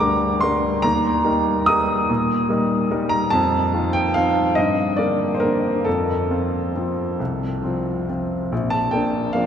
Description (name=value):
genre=classical, piano waltz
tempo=129-153 BPM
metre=3/4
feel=rubato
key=unclear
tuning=A4 = 441 Hz
part: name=warm upright piano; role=solo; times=0.0-9.5 s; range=Bb1 to Eb6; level=-18 LUFS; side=equal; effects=none
room=wet cathedral reverb, RT60 6.5 s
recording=none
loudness=-18 LUFS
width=side -8 dB against mid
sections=0.0-8.5 A section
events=none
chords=0.0 Gm; 0.8 Eb; 3.3 F7; 4.6 Gm; 5.9 F; 8.5 Bb